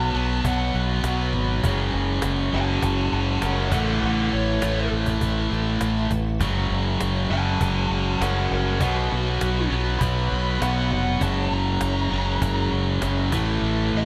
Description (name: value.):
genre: hard rock.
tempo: 100 BPM.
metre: 4/4.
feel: straight.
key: unclear.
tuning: A4 = 440 Hz.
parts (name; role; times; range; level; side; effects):
high-gain lead guitar; melody; 0.0-14.1 s; F#4 to B5; -31 LUFS; equal; distortion, slapback echo.
tonewheel organ; sustained chords; 0.0-14.1 s; F#3 to C#5; -37 LUFS; equal; none.
cranked stack guitar; riff; 0.0-14.1 s; F#2 to B3; -31 LUFS; equal; overdrive, slapback echo.
raw garage guitar; riff; 0.0-14.1 s; F#2 to B3; -33 LUFS; equal; overdrive, phaser, slapback echo.
scooped high-gain guitar; riff; 0.0-14.1 s; F#2 to B3; -32 LUFS; equal; distortion, slapback echo.
growling fingered electric bass; bass; 0.0-14.1 s; E#1 to B1; -27 LUFS; equal; overdrive.
cajon; drums; 0.4-13.5 s; none; -31 LUFS; equal; none.
room: moderate lush hall reverb, RT60 2.3 s.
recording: big arena sound.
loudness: -23 LUFS.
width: mono.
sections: 0.0-14.1 A section.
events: lead electric guitar solo 0.0-14.1.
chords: 0.0 B5; 1.6 F#5; 3.7 A; 6.4 F#; 8.8 B5; 11.2 F#; 13.3 A5.